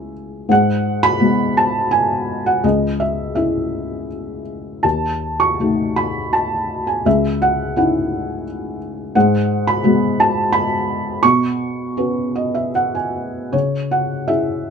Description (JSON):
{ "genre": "classical, lyrical solo piano", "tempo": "75-88 BPM", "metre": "3/4", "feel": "rubato", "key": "C# minor", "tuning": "A4 = 441 Hz", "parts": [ { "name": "felt-muted upright piano", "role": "solo", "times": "0.0-14.7 s", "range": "C#2 to C#6", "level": "-16 LUFS", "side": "equal", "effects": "none" } ], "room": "moderate small room reverb, RT60 0.5 s", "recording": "none", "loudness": "-16 LUFS", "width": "side -6 dB against mid", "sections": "0.0-13.5 A section; 13.5-14.7 B section", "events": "felt piano fill 12.0-13.5", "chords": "0.0 C#m; 0.5 G#m7; 2.6 C#m; 4.8 D#dim; 7.1 C#madd9; 9.2 G#m7; 11.2 Bsus2; 13.5 C#m", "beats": "| 0.50 1.20 1.92 | 2.64 3.36 4.09 | 4.84 5.60 6.34 | 7.06 7.76 8.46 | 9.15 9.84 10.53 | 11.23 11.97 12.75 | 13.54 14.28" }